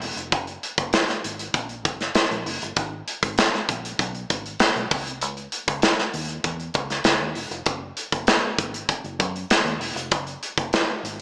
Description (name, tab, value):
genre	polished 1980s jazz-funk pop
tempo	98 BPM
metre	4/4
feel	straight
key	unclear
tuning	A4 = 440 Hz
part	vintage muted fingered electric bass	bass	0.0-11.2 s	E1 to F#2	-34 LUFS	equal	none
part	modern studio drum kit	drums	0.0-11.2 s	hi-hat, kick drum, snare drum	-22 LUFS	equal	none
room	wet lush hall reverb, RT60 1.8 s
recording	big arena sound, small speaker sound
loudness	-21 LUFS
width	side -29 dB against mid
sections	0.0-11.2 A section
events	none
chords	none